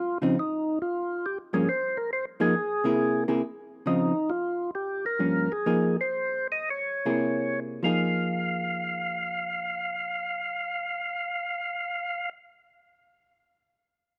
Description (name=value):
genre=jazz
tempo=96-138 BPM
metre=4/4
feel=swing 66% on 8ths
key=F minor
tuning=A4 = 441 Hz
part: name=percussive tonewheel organ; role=melody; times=0.0-12.3 s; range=Eb4 to F5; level=-31 LUFS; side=equal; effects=slow rotary speaker
part: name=vintage hollow-body jazz guitar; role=accompaniment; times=0.2-12.3 s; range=G2 to Ab4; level=-28 LUFS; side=equal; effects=none
room=little or no reverb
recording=dry, close 1970s-style studio recording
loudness=-28 LUFS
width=mono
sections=0.4-7.8 A section; 7.8-12.8 B section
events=slowing down 3.9-7.8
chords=0.4 N.C.; 1.2 Gm7b5; 2.1 Fm7; 3.0 C7b13; 3.9 Dbmaj9; 4.7 Gm7b5; 5.7 Fm7; 6.7 C7b9b13; 7.8 Fm7